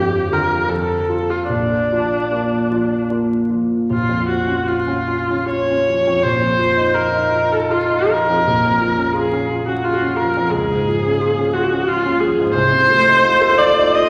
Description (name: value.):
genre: classical, romantic duo for viola and grand piano.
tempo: 70-89 BPM.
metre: 3/4.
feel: rubato.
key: Bb major, Bb minor from 3.9 s.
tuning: A4 = 441 Hz.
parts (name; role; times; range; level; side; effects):
warm viola; melody; 0.0-14.1 s; D4 to Eb5; -19 LUFS; equal; none.
warm grand piano; accompaniment; 0.0-14.1 s; Bb1 to A4; -21 LUFS; equal; none.
room: wet concert hall reverb, RT60 2.1 s.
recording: vinyl crackle.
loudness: -17 LUFS.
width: mono.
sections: 0.0-3.9 A section; 3.9-14.1 B section.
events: none.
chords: 0.0 Bb/F; 0.7 N.C.; 1.5 Bb; 3.9 Bbm; 6.2 F5/Bb; 8.5 Bbm; 10.5 Db; 12.6 F7/C.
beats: 0.69 | 1.50 2.31 3.11 | 3.91 4.68 5.51 | 6.24 6.96 7.71 | 8.47 9.16 9.85 | 10.53 11.21 11.89 | 12.56 13.24 13.96.